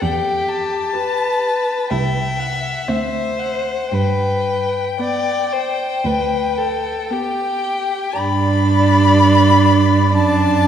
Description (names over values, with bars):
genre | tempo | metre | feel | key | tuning
classical, slow romantic movement for string quartet | 55-65 BPM | 4/4 | rubato | G major | A4 = 440 Hz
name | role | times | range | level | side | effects
rich violin | melody | 0.0-10.7 s | E5 to B5 | -20 LUFS | left 4 dB | none
clear violin | second line | 0.0-10.7 s | G4 to E5 | -21 LUFS | left 2 dB | none
rich cello | bass | 0.0-10.7 s | C2 to G2 | -19 LUFS | right 3 dB | none
rich viola | accompaniment | 0.9-10.7 s | B3 to G4 | -19 LUFS | right 4 dB | none
room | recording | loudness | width
wet scoring stage reverb, RT60 2.2 s | heard from further back in the room | -15 LUFS | side -9 dB against mid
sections
0.0-8.2 A section; 8.2-10.7 B section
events
none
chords
0.0 Em; 1.9 C; 2.9 D7; 3.9 G; 10.1 D/F#